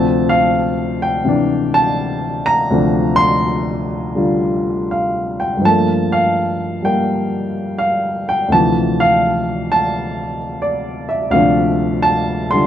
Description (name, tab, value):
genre	solo jazz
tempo	83 BPM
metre	4/4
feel	swing 67% on 8ths, rubato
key	D minor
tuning	A4 = 437 Hz
part	warm upright piano	solo	0.0-12.7 s	D2 to C6	-14 LUFS	equal	none
room	light reverb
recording	none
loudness	-14 LUFS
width	side -10 dB against mid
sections	0.0-12.7 A section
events	none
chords	0.0 Dm9; 5.6 Gm9; 8.5 Dm9